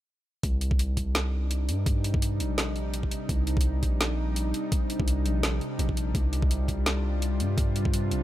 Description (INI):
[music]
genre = half-time drum and bass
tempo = 168 BPM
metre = 4/4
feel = swing 55% on 16ths, half-time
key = C minor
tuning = A4 = 443 Hz
[part]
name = bowed-like drone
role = sustained chords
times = 1.1-8.2 s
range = C3 to F4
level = -33 LUFS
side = left 1 dB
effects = built-in reverb, sidechain pumping
[part]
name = long sustained 808-style bass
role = bass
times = 0.4-8.2 s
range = Bb1 to G2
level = -27 LUFS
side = equal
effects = tube saturation
[part]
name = drum and bass drum kit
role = drums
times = 0.4-8.2 s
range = hi-hat, snare drum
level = -31 LUFS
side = equal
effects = overdrive
[part]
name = electronic kick drum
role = drums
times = 0.4-7.9 s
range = none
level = -28 LUFS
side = equal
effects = overdrive
[sound]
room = digital ambience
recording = none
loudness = -25 LUFS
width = side -14 dB against mid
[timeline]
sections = 0.4-8.2 A section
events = none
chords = 0.4 Cm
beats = | 0.44 0.79 1.15 1.51 | 1.86 2.22 2.58 2.94 | 3.29 3.65 4.01 4.36 | 4.72 5.08 5.44 5.79 | 6.15 6.51 6.86 7.22 | 7.58 7.94